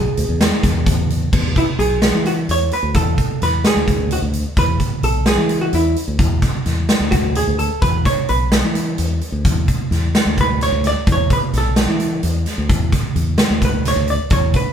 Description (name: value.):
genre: progressive instrumental, band music in an uneven meter.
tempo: 259 BPM (eighths).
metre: 7/8.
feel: straight.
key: E mixolydian.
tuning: A4 = 440 Hz.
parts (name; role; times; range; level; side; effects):
vintage hollow-body jazz guitar; melody; 0.0-14.7 s; E4 to D5; -20 LUFS; right 2 dB; none.
modern bright fingered electric bass; bass; 0.0-14.5 s; B1 to E3; -20 LUFS; left 1 dB; none.
big rock drum kit; drums; 0.2-14.7 s; crash cymbal, hi-hat, kick drum, snare drum; -18 LUFS; equal; none.
room: moderate studio reverb, RT60 0.9 s.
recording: band playing live in one room.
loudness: -15 LUFS.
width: side -8 dB against mid.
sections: 0.0-1.3 A section; 1.3-14.7 B section.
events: hollow-body jazz guitar solo 1.3-14.7.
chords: 0.0 E; 1.3 E7(no3).